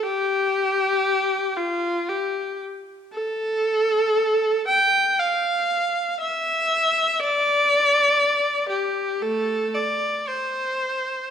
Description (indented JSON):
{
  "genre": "classical, free, expressive piece for unaccompanied viola",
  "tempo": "59 BPM",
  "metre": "3/4",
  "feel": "uneven beats, rubato",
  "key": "unclear",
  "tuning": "A4 = 439 Hz",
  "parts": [
    { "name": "rich viola", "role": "solo", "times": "0.0-11.3 s", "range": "A3 to G5", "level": "-20 LUFS", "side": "equal", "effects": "none" }
  ],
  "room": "moderate scoring stage reverb, RT60 1.7 s",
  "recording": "minimal, uncompressed stereo recording",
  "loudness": "-20 LUFS",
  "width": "side -8 dB against mid",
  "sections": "0.0-11.3 A section",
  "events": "none",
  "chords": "none"
}